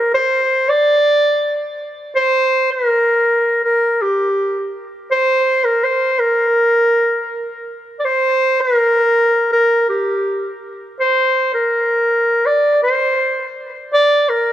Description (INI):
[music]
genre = andean folk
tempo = 82 BPM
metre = 4/4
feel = straight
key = unclear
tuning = A4 = 440 Hz
[part]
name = warm clarinet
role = solo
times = 0.0-14.5 s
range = G4 to D5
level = -14 LUFS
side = equal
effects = tape echo
[sound]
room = wet studio reverb, RT60 0.6 s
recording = cassette tape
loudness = -13 LUFS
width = side -11 dB against mid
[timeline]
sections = 0.0-14.5 A section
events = none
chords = none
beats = 0.69 1.43 | 2.16 2.90 3.64 4.38 | 5.11 5.85 6.58 7.32 | 8.05 8.79 9.52 10.26 | 10.99 11.72 12.45 13.18 | 13.91